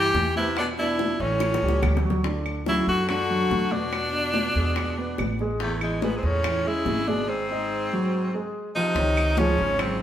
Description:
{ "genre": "Afro-Cuban jazz", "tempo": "143 BPM", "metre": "4/4", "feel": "straight", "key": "A major", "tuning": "A4 = 441 Hz", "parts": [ { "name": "bright tenor saxophone", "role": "melody", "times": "0.0-10.0 s", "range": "G#3 to G4", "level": "-25 LUFS", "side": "equal", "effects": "none" }, { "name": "breathy baritone saxophone", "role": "second line", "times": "0.0-10.0 s", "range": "E2 to E3", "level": "-32 LUFS", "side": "left 1 dB", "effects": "none" }, { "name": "warm concert grand piano", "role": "accompaniment", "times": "0.0-9.9 s", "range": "Db3 to D#5", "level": "-28 LUFS", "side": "right 1 dB", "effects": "none" }, { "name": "upright bass", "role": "bass", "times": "0.0-10.0 s", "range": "G#1 to G2", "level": "-29 LUFS", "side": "equal", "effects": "none" }, { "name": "bongos", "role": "percussion", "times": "0.1-10.0 s", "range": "none", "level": "-33 LUFS", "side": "left 2 dB", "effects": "none" }, { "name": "congas", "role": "percussion", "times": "0.1-10.0 s", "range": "none", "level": "-34 LUFS", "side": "left 1 dB", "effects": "none" }, { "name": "claves", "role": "percussion", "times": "0.6-10.0 s", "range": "none", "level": "-36 LUFS", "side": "equal", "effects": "none" } ], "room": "wet stone room reverb, RT60 1.2 s", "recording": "band playing live in one room", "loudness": "-22 LUFS", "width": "side -11 dB against mid", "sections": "0.0-9.0 A section; 9.0-10.0 B section", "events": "drum fill 1.4-2.2", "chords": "0.0 Cmaj7; 0.6 E5; 1.4 A7; 2.2 Dadd9; 3.9 E7; 5.6 Amaj7; 7.3 G#7; 9.0 Dbmaj9" }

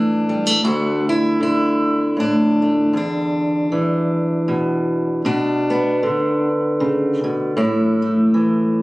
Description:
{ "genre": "folk, solo fingerstyle acoustic guitar", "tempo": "78 BPM", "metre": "3/4", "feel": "swing 58% on 8ths", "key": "unclear", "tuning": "A4 = 444 Hz", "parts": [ { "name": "fingerpicked steel-string acoustic guitar", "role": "solo", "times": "0.0-8.8 s", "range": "D2 to F#4", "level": "-16 LUFS", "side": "equal", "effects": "none" } ], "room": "light reverb", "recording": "recorded on a phone in the room, club reverb, compression", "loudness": "-16 LUFS", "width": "side -20 dB against mid", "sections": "0.6-8.8 A section", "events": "none", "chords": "0.0 A5; 0.6 D5; 2.9 E5; 5.3 Bm; 7.6 A5" }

